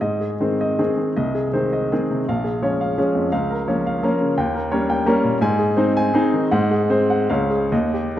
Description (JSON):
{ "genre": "classical, romantic triple-time dance for piano with dotted rhythms", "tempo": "131-181 BPM", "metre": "3/4", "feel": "rubato", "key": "Ab major", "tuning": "A4 = 441 Hz", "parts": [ { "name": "warm baby grand piano", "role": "solo", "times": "0.0-8.2 s", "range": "Bb1 to Ab5", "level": "-18 LUFS", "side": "equal", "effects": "none" } ], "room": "moderate scoring stage reverb, RT60 1.9 s", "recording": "none", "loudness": "-17 LUFS", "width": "side -12 dB against mid", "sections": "0.0-8.2 A section", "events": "none", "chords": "0.0 Ab; 1.2 Ab/C; 2.3 Bbm7; 3.3 Bbm/Db; 4.4 Eb7; 5.4 Ab; 6.5 Ab7; 7.3 Db" }